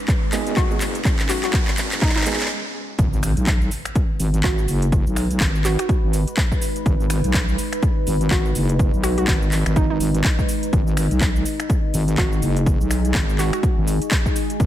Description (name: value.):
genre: bass house.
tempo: 124 BPM.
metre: 4/4.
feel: swing 59% on 16ths.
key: G# minor.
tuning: A4 = 440 Hz.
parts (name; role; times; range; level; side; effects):
deep dark ambient pad; sustained chords; 0.0-14.7 s; G#3 to B4; -28 LUFS; equal; chorus, built-in reverb, sidechain pumping.
riser and impact; sound effects; 0.0-4.9 s; none; -30 LUFS; equal; none.
electronic kick drum; drums; 0.1-14.7 s; none; -20 LUFS; equal; overdrive.
house drum kit; drums; 0.1-14.7 s; finger snaps, handclaps, hi-hat, shaker; -26 LUFS; equal; overdrive.
percussive organ stab; stabs; 0.3-2.5 s; G#3 to G#4; -29 LUFS; right 5 dB; chorus, sidechain pumping, tape echo.
wobble bass; bass; 0.3-14.7 s; F#1 to B1; -22 LUFS; equal; chorus, sidechain pumping, high-pass filter.
hollow square pluck; melody; 0.6-13.6 s; D#4 to F#4; -28 LUFS; right 1 dB; chorus, tape echo.
room: little or no reverb.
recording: none.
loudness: -17 LUFS.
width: side -12 dB against mid.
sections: 0.0-3.0 A section; 3.0-14.7 B section.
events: build-up 0.0-3.0; drum fill 0.0-2.5; riser 0.0-2.5; stop 2.5-3.0; drop 3.0-14.7; impact 3.0-4.9.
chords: 0.0 G#m.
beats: 0.08 0.57 | 1.05 1.53 2.02 2.50 | 2.99 3.47 3.95 4.44 | 4.92 5.41 5.89 6.37 | 6.86 7.34 7.83 8.31 | 8.79 9.28 9.76 10.24 | 10.73 11.21 11.70 12.18 | 12.66 13.15 13.63 14.12 | 14.60.